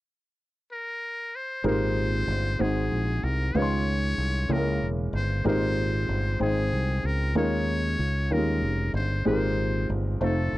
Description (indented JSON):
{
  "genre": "slow gospel",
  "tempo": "63 BPM (dotted quarters)",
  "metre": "6/8",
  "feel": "straight",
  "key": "Ab major",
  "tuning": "A4 = 441 Hz",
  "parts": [
    { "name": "trumpet with metal mute", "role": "melody", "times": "0.7-10.6 s", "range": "Ab4 to Db5", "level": "-32 LUFS", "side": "left 1 dB", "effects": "none" },
    { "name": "warm upright piano", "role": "accompaniment", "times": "1.6-10.6 s", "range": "Ab2 to C6", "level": "-27 LUFS", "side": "equal", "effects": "none" },
    { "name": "fingered electric bass", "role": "bass", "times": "1.6-10.6 s", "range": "Fb1 to Eb2", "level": "-27 LUFS", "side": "equal", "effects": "none" }
  ],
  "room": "little or no reverb",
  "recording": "dry, close 1970s-style studio recording",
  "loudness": "-24 LUFS",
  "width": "side -16 dB against mid",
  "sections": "0.0-1.6 A section; 1.6-10.6 B section",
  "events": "none",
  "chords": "0.0 N.C.; 1.6 Abmaj9; 2.6 Ab7; 3.5 Dbmaj9; 4.5 Dbm6; 5.4 Abmaj9; 7.4 Eb9sus4; 9.3 Abmaj9"
}